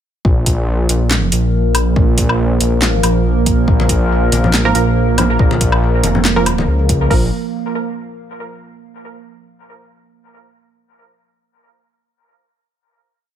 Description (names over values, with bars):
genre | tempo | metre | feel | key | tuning
deep dubstep | 140 BPM | 4/4 | swing 54% on 16ths, half-time | unclear | A4 = 440 Hz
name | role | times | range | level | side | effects
dark analog pad | sustained chords | 0.8-7.3 s | F3 to Bb4 | -19 LUFS | right 3 dB | chorus, phaser
dark detuned saw bass | bass | 0.2-7.3 s | F1 to Db2 | -15 LUFS | equal | none
deep house drum kit | drums | 0.2-7.2 s | hi-hat, kick drum | -15 LUFS | left 1 dB | overdrive, small room ambience
deep house drum kit | drums | 0.5-7.0 s | handclaps, hi-hat, snare drum, woodblock | -18 LUFS | left 1 dB | overdrive, small room ambience
congas | percussion | 3.8-6.7 s | none | -22 LUFS | left 4 dB | dub echo
filtered dub chord stab | stabs | 4.7-7.3 s | F3 to Bb4 | -21 LUFS | right 3 dB | chorus, cassette tape, dub echo
room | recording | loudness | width
light reverb | none | -12 LUFS | side -10 dB against mid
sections
0.2-7.1 drop; 7.1-8.8 final chord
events
drop 0.2-7.1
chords
0.2 Bb5